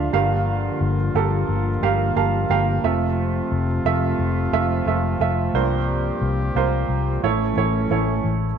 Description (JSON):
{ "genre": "pop", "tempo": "89 BPM", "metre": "4/4", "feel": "straight", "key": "unclear", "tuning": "A4 = 440 Hz", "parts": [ { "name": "clear upright piano", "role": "accompaniment", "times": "0.0-8.6 s", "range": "G2 to A5", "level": "-22 LUFS", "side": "right 8 dB", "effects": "none" }, { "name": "mellow brass ensemble", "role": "sustained chords", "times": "0.0-8.4 s", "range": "C3 to G4", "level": "-27 LUFS", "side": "left 3 dB", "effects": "none" }, { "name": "vintage muted fingered electric bass", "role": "bass", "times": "0.0-8.5 s", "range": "F1 to C2", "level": "-23 LUFS", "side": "left 2 dB", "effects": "none" } ], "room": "moderate echo chamber reverb, RT60 1.9 s, small room ambience", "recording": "1960s-style stereo", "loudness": "-19 LUFS", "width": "side -7 dB against mid", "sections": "0.0-8.6 A section", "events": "upright piano fill 1.8-3.2", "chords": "0.1 Gm7; 2.8 Fmaj7; 5.5 C7sus4; 7.2 A", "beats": "| 0.48 1.15 1.83 2.50 | 3.18 3.86 4.53 5.21 | 5.88 6.56 7.24 7.91" }